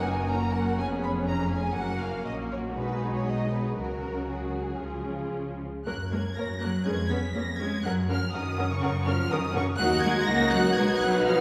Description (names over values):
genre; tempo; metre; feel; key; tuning
quick classical-period movement for string orchestra; 121 BPM; 4/4; rubato; F# major; A4 = 439 Hz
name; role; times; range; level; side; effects
warm symphonic violin section; melody; 0.0-11.4 s; G#4 to B6; -35 LUFS; equal; none
dark symphonic violin section; second line; 0.0-11.4 s; C#4 to F#5; -35 LUFS; equal; none
rich symphonic viola section; accompaniment; 0.0-11.4 s; E#3 to A#4; -34 LUFS; equal; none
rich symphonic cello section; bass; 0.0-11.4 s; E#2 to B3; -34 LUFS; equal; none
rich symphonic double bass section; bass; 0.0-11.4 s; E#1 to F#2; -35 LUFS; equal; none
room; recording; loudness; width
wet scoring stage reverb, RT60 2.0 s; heard from further back in the room; -28 LUFS; mono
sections
0.0-5.9 A section; 5.9-11.4 B section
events
none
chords
0.0 F#; 0.8 C#7/E#; 1.8 F#; 2.8 G#m/B; 3.8 C#sus4; 4.8 C#; 5.9 F#; 6.9 C#7/E#; 7.8 F#; 9.8 D#m; 10.8 B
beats
0.31 0.80 1.29 | 1.77 2.27 2.76 3.26 | 3.78 4.30 4.82 5.34 | 5.86 6.36 6.86 7.35 | 7.85 8.35 8.83 9.31 | 9.79 10.28 10.77 11.27